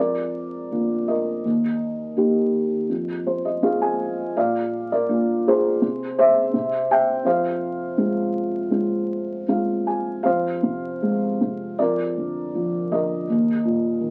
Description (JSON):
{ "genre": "classical, lyrical solo piano", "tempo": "82 BPM", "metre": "4/4", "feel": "rubato", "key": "F dorian", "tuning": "A4 = 439 Hz", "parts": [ { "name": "felt-muted upright piano", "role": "solo", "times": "0.0-14.1 s", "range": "Eb2 to Ab5", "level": "-22 LUFS", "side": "equal", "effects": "none" } ], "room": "moderate small room reverb, RT60 0.6 s", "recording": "very old 78 rpm record, vinyl crackle", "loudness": "-23 LUFS", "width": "mono", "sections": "0.0-10.2 A section; 10.2-14.1 B section", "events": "felt piano fill 2.9-4.4, 9.1-10.2", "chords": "0.0 Bb/F; 1.4 Eb; 2.9 Fm; 4.4 Bb; 5.8 Caug; 6.5 C; 7.2 Fm; 11.8 Bb/F; 13.3 Eb5" }